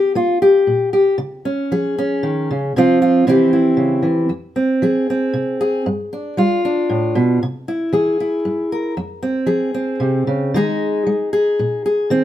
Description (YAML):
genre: folk, solo fingerstyle acoustic guitar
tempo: 116 BPM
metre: 3/4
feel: straight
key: unclear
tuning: A4 = 440 Hz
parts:
  - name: fingerpicked steel-string acoustic guitar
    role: solo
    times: 0.0-12.2 s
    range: F2 to Bb4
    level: -15 LUFS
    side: equal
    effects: none
room: moderate studio reverb, RT60 0.7 s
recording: band playing live in one room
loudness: -15 LUFS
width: side -12 dB against mid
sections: 0.0-10.5 A section; 10.5-12.2 B section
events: none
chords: 0.0 Eb (rootless); 1.2 Db; 2.7 Csus4; 3.3 C; 4.3 Fm; 5.9 G7; 7.4 C7; 9.0 Fm; 10.5 Ebsus4